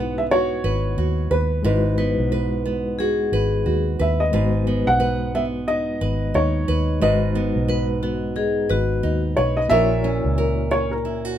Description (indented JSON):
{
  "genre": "acoustic pop",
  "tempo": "89 BPM",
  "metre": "4/4",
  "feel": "swing 60% on 16ths",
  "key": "G# minor",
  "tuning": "A4 = 440 Hz",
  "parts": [
    { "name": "dark upright piano", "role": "melody", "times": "0.0-11.4 s", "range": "A#4 to F#5", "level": "-23 LUFS", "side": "equal", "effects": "none" },
    { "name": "nylon-string guitar", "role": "accompaniment", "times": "0.0-11.4 s", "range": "G#2 to B4", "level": "-24 LUFS", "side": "right 3 dB", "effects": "none" },
    { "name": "reed electric piano", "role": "accompaniment", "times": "0.0-11.4 s", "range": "G#3 to C#5", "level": "-29 LUFS", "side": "left 3 dB", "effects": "fast tremolo" },
    { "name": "vintage muted fingered electric bass", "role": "bass", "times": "0.0-11.3 s", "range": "G#1 to D#2", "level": "-23 LUFS", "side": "equal", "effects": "none" },
    { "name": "vibraphone with medium mallets", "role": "second line", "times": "2.0-9.2 s", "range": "F#4 to B4", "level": "-25 LUFS", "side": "left 5 dB", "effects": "none" }
  ],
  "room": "light reverb",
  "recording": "minimal, uncompressed stereo recording",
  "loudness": "-18 LUFS",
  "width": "side -10 dB against mid",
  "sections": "0.0-11.4 A section",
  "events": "none",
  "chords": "0.0 Eadd9/G#; 4.3 G#m7; 9.7 F#7/A#"
}